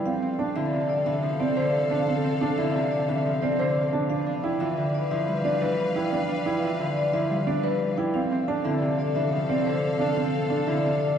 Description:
classical, minimalist pattern music; 178 BPM; 6/4; straight; A4 = 440 Hz
vibraphone with medium mallets; melody; 0.0-11.2 s; B4 to A5; -29 LUFS; left 5 dB
Celtic harp; accompaniment; 0.0-11.2 s; C3 to D4; -26 LUFS; equal
warm grand piano; arpeggios; 0.0-10.9 s; C4 to D5; -29 LUFS; right 5 dB
rich studio string section; sustained chords; 0.1-11.2 s; A4 to F5; -33 LUFS; left 2 dB
wet cathedral reverb, RT60 4.4 s; dark, warm production; -23 LUFS; side -8 dB against mid
0.0-11.2 A section
0.1 Fmaj7; 4.1 G7; 8.1 Fmaj7

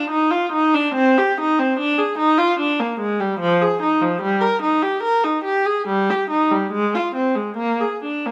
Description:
classical, baroque-style suite movement for unaccompanied viola; 66-75 BPM; 3/4; rubato; A4 = 440 Hz
warm viola; solo; 0.0-8.3 s; F3 to Bb4; -19 LUFS; equal
light reverb; close, detailed microphones; -19 LUFS; mono
0.0-8.3 A section

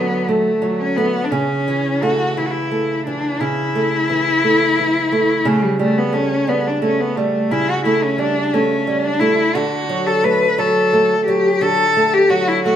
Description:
romantic duo for cello and classical guitar; 58 BPM (dotted quarters); 12/8; rubato; A4 = 439 Hz
rich cello; melody; 0.0-12.8 s; G3 to B4; -17 LUFS; left 2 dB
nylon-string guitar; accompaniment; 0.0-12.8 s; C#3 to A3; -19 LUFS; right 2 dB
wet stone room reverb, RT60 1.2 s; band playing live in one room; -15 LUFS; side -10 dB against mid
0.0-12.8 A section
0.0 D; 1.3 A/C#; 5.5 A7/C#; 9.6 D

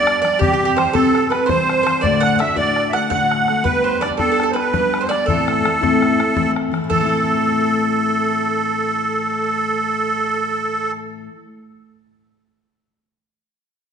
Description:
celtic folk, Celtic slip jig; 111 BPM (dotted quarters); 9/8; straight; A dorian; A4 = 439 Hz
musette accordion; melody; 0.0-10.9 s; G4 to F#5; -18 LUFS; right 2 dB
mandolin; second line; 0.0-11.3 s; G4 to F#5; -23 LUFS; right 5 dB
picked steel-string acoustic guitar; accompaniment; 0.0-11.5 s; D2 to G4; -21 LUFS; left 5 dB
bodhran; percussion; 0.1-7.1 s; -25 LUFS; left 4 dB
wet scoring stage reverb, RT60 1.9 s; recorded in a church or concert hall, nothing above 10.7 kHz; -15 LUFS; side -7 dB against mid
0.0-6.9 A section; 6.9-10.2 B section
0.4 C; 2.0 D; 3.7 G; 5.3 Am

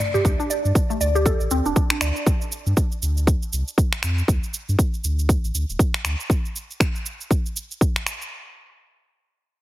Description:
afro house; 119 BPM; 4/4; swing 58% on 16ths; D minor; A4 = 440 Hz
mallet-like synth pluck; arpeggios; 0.0-2.1 s; A3 to D5; -24 LUFS; equal; analog chorus, sidechain pumping, dub echo
house drum kit; drums; 0.0-8.3 s; finger snaps, shaker, toms; -27 LUFS; right 1 dB
warm sub bass; bass; 0.2-6.2 s; D1 to G2; -22 LUFS; equal; sidechain pumping
electronic kick drum; drums; 0.2-7.9 s; -20 LUFS; equal
light reverb; heavily compressed radio sound, multiband compression; -20 LUFS; side -15 dB against mid
0.2-8.3 A section
drum fill 0.0; filter sweep on sub bass 0.2-6.3; filter sweep on synth pluck 0.2-2.3

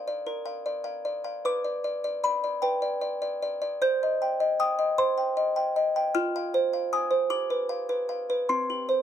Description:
classical, lullaby for music box; 51 BPM (dotted quarters); 6/8; rubato; C minor; A4 = 440 Hz
music box; solo; 0.0-9.0 s; C4 to G6; -25 LUFS; equal
little or no reverb; dry, close 1970s-style studio recording; -25 LUFS; side -10 dB against mid
0.0-9.0 A section
0.0 Bb; 1.5 G/B; 3.8 Cm; 6.2 Fm; 7.3 G7; 8.5 C5

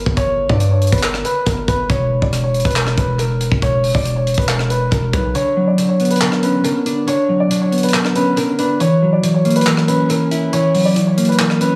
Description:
hip hop, trap; 139 BPM; 4/4; half-time; B harmonic minor; A4 = 438 Hz
dark baby grand piano; melody; 0.0-11.8 s; Bb4 to D5; -22 LUFS; equal; tape echo
hard-hitting 808-style bass; bass; 0.0-5.3 s; E1 to G2; -20 LUFS; equal
tight funk drum kit; drums; 0.1-11.7 s; handclaps, hi-hat, kick drum, rim click; -23 LUFS; equal; tape echo
mellow electric guitar; accompaniment; 5.3-11.8 s; D3 to E4; -17 LUFS; equal
light reverb, studio reverb; echo-heavy mix; -16 LUFS; mono
0.0-11.8 A section
kick muted 5.3-11.8
0.0 Gdim; 1.9 E5; 5.3 Bmadd9; 8.8 F#7

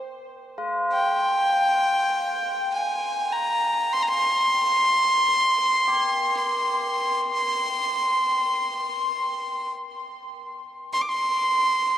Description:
world meditative, free-time meditation music; free time; A4 = 441 Hz
tubular bells; texture; 0.0-12.0 s; F4 to G4; -31 LUFS; left 1 dB
clear fiddle; melody; 0.9-12.0 s; G5 to D6; -21 LUFS; equal; diffuse ambient delay
wet huge ambient reverb, RT60 7.8 s; worn, warbling old tape, cassette tape, warbly pitch drift, lossy compression artefacts; -20 LUFS; side -11 dB against mid
0.1-12.0 A section

